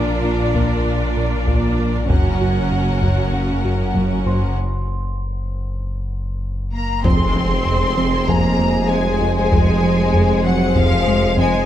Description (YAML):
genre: cinematic, hybrid orchestral and electronic film score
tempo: 97 BPM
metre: 4/4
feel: straight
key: F phrygian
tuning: A4 = 440 Hz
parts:
  - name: clear symphonic violin section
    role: second line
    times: 0.0-11.7 s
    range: Ab4 to Gb5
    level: -29 LUFS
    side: left 3 dB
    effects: none
  - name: rich symphonic viola section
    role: accompaniment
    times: 0.0-11.7 s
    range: Ab3 to Ab4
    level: -27 LUFS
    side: right 2 dB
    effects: none
  - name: mellow French horn section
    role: sustained chords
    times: 0.0-11.7 s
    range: Bb3 to C5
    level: -26 LUFS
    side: left 5 dB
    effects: none
  - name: soft round pluck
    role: arpeggios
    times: 0.0-11.6 s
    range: F3 to Bb4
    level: -26 LUFS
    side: left 3 dB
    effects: chorus, tape echo
  - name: round analog bass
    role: riff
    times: 0.0-11.6 s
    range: F2 to F3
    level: -23 LUFS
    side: right 2 dB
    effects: none
  - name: clear symphonic cello section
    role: bass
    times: 0.0-11.7 s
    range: Gb2 to C4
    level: -24 LUFS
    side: right 2 dB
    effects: none
  - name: rich symphonic double bass section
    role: bass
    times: 0.0-11.7 s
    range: Gb1 to F2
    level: -26 LUFS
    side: right 2 dB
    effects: none
  - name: sub bass with octave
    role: bass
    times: 0.0-11.7 s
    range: F1 to Bb1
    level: -24 LUFS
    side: left 1 dB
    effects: none
  - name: felt-muted upright piano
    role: texture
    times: 0.0-11.7 s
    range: C5 to C6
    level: -35 LUFS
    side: equal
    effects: tape echo
  - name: taiko ensemble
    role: drums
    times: 0.5-11.7 s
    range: none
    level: -22 LUFS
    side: equal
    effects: none
  - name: clear symphonic violin section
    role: melody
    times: 6.7-11.7 s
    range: F5 to C6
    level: -23 LUFS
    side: left 3 dB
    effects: none
  - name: warm trombone section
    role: sustained chords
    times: 7.0-11.7 s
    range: C3 to Ab3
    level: -27 LUFS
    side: right 3 dB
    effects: none
  - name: warm tuba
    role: bass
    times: 7.0-11.7 s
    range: F1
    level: -25 LUFS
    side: right 4 dB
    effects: none
  - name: impact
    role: sound effects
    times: 7.0-9.5 s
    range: none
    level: -27 LUFS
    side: left 1 dB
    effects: none
room: light reverb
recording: close, detailed microphones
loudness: -16 LUFS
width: side -11 dB against mid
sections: 0.0-7.0 A section; 7.0-11.7 B section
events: build-up 0.0-7.0; break 4.6-7.0; drum fill 6.1-7.0; impact 7.0-9.5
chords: 0.0 Bb; 2.1 Gb; 7.0 Fm